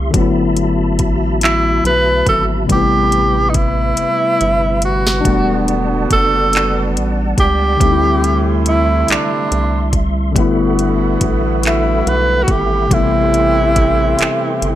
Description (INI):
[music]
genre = slow six-eight R&B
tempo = 47 BPM (dotted quarters)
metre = 6/8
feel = straight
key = unclear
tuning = A4 = 444 Hz
[part]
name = tine electric piano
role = accompaniment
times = 0.0-14.8 s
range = B2 to F#5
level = -19 LUFS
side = left 5 dB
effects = none
[part]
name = mellow tonewheel organ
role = sustained chords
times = 0.0-14.8 s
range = G3 to C6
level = -24 LUFS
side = right 1 dB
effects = chorus vibrato, fast rotary speaker
[part]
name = rubbery square bass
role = bass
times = 0.0-14.8 s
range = E1 to D2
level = -19 LUFS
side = equal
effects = none
[part]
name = smooth R&B drum kit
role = drums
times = 0.1-14.8 s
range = handclaps, hi-hat, kick drum, snare drum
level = -18 LUFS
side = equal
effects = none
[part]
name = breathy tenor saxophone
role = melody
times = 1.4-14.8 s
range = D4 to B4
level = -16 LUFS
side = right 1 dB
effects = slapback echo
[part]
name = mellow horn section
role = stabs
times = 5.2-14.8 s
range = C3 to G4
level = -23 LUFS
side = right 7 dB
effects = none
[sound]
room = little or no reverb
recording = none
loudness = -12 LUFS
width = side -12 dB against mid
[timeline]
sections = 0.0-14.8 A section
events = drum fill 4.0-5.2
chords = 0.1 Gmaj13; 2.7 Am9; 5.2 Em11; 7.8 D9sus4; 10.4 Gmaj13; 12.9 Am9